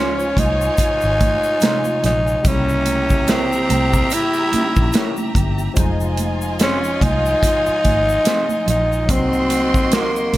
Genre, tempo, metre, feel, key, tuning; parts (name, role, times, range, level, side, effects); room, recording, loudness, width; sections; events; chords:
lush 1970s-style soul; 72 BPM; 4/4; swing 58% on 16ths; A4 = 440 Hz
growling tenor saxophone; melody; 0.0-10.4 s; Bb3 to E4; -18 LUFS; equal
warm studio violin section; second line; 0.0-10.4 s; F4 to C6; -25 LUFS; equal
barky tine electric piano; accompaniment; 0.0-10.4 s; C3 to C5; -27 LUFS; left 2 dB; phaser
electric guitar through a small old amp; riff; 0.0-10.1 s; Ab3 to Db5; -28 LUFS; right 3 dB
vintage muted fingered electric bass; bass; 0.0-10.4 s; F1 to Db2; -22 LUFS; equal
tube shaker; percussion; 0.2-10.3 s; -35 LUFS; left 6 dB
modern studio drum kit; drums; 0.4-10.4 s; hi-hat, kick drum, snare drum; -20 LUFS; equal
congas; percussion; 0.4-10.4 s; -28 LUFS; right 5 dB
light reverb, small room reverb; -15 LUFS; side -16 dB against mid
0.0-10.4 A section
0.0 Dbmaj7; 2.4 C7b9; 5.8 Fm7; 9.1 Cm7b5